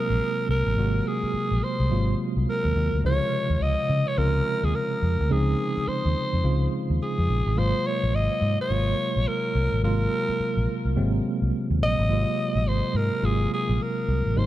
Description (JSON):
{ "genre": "R&B, new jack swing", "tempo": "106 BPM", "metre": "4/4", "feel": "swing 62% on 16ths", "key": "unclear", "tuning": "A4 = 437 Hz", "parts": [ { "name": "raspy alto saxophone", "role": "melody", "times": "0.0-14.5 s", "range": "Ab4 to Eb5", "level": "-27 LUFS", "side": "equal", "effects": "none" }, { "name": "tine electric piano", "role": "accompaniment", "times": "0.0-14.5 s", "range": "C3 to Gb4", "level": "-27 LUFS", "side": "right 1 dB", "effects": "fast stereo tremolo" }, { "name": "vintage muted fingered electric bass", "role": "bass", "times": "0.1-14.5 s", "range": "Ab1 to Db3", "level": "-24 LUFS", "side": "equal", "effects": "none" } ], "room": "studio ambience", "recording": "dark, warm production", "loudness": "-22 LUFS", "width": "side -14 dB against mid", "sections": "0.0-14.5 A section", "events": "none", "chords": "0.0 Ab13; 3.0 Dbmaj7; 7.6 Ab13" }